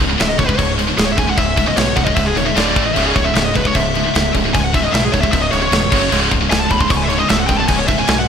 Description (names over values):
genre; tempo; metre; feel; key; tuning
heavy metal; 152 BPM; 4/4; straight; C# minor; A4 = 440 Hz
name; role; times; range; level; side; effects
heavy high-gain guitar; riff; 0.0-8.3 s; C#2 to A3; -22 LUFS; left 11 dB; distortion, slapback echo
heavy high-gain guitar; riff; 0.0-8.3 s; C#2 to A3; -20 LUFS; right 9 dB; distortion, slapback echo
plucky analog bass; bass; 0.0-8.3 s; C#1 to B1; -21 LUFS; equal; none
tight metal drum kit; drums; 0.0-8.2 s; crash cymbal, kick drum, snare drum; -18 LUFS; equal; none
high-gain lead guitar; melody; 0.2-8.3 s; G#4 to C#6; -18 LUFS; left 1 dB; distortion, slapback echo
room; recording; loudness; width
moderate scoring stage reverb, RT60 1.9 s, small room ambience; big arena sound; -13 LUFS; side -7 dB against mid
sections
0.0-8.3 A section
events
lead electric guitar solo 0.0-8.3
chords
0.0 C#5; 2.6 D5; 2.8 A5; 3.0 C#m; 5.9 F#5; 6.1 C#5